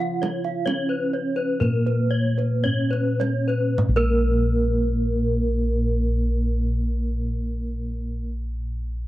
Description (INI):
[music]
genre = Balinese gamelan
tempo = 51-70 BPM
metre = 4/4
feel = straight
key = unclear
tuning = A4 = 440 Hz
[part]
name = gamelan-type bronze metallophone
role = melody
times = 0.0-8.3 s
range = Bb3 to F4-30c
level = -28 LUFS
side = right 2 dB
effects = analog delay
[part]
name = gamelan-type bronze metallophone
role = arpeggios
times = 0.0-8.3 s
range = Bb4 to Gb5-20c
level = -29 LUFS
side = right 6 dB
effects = plate reverb
[part]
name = gamelan-type bossed gongs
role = bass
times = 0.0-8.2 s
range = Bb1 to F4-30c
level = -24 LUFS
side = equal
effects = none
[part]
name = kendang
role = percussion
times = 0.0-4.3 s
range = none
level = -29 LUFS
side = right 2 dB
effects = none
[part]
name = gamelan-type bronze metallophone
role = arpeggios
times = 0.2-8.3 s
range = Bb4 to Db5-30c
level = -29 LUFS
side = left 4 dB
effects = plate reverb
[sound]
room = light reverb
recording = dark, warm production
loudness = -21 LUFS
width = side -15 dB against mid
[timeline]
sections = 0.0-3.8 A section; 3.8-8.5 B section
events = slowing down 0.0-3.8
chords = none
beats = 0.67 1.62 2.65 | 3.78 4.96 6.15 7.33